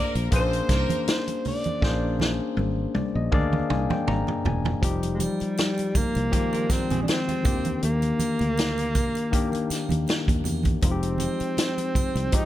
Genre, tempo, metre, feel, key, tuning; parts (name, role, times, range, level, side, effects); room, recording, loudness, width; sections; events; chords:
lush 1970s-style soul; 80 BPM; 4/4; swing 54% on 16ths; A4 = 439 Hz
breathy alto saxophone; melody; 0.0-12.5 s; G3 to D5; -28 LUFS; right 1 dB; slapback echo
clear studio violin section; second line; 0.0-1.0 s; Bb3 to C5; -35 LUFS; left 3 dB
barky tine electric piano; accompaniment; 0.0-12.5 s; Eb3 to Bb5; -28 LUFS; left 4 dB; overdrive
fingered electric bass; bass; 0.2-12.3 s; Fb1 to Fb2; -27 LUFS; equal
vintage drum kit; drums; 0.2-12.5 s; hi-hat, kick drum, snare drum, toms; -26 LUFS; equal
congas; percussion; 0.9-12.5 s; -33 LUFS; right 5 dB
triangle; percussion; 4.8-12.5 s; -38 LUFS; right 12 dB
electric guitar through a small old amp; riff; 6.3-7.6 s; Ab3 to Bb4; -35 LUFS; right 7 dB; wide subtle chorus
small room ambience; -22 LUFS; side -13 dB against mid
0.0-4.8 A section; 4.8-12.5 B section
drum fill 1.8-4.8; tine electric piano fill 2.6-4.8
0.0 Bb9; 4.8 Fm9; 7.5 Ebmaj7; 10.8 Fm9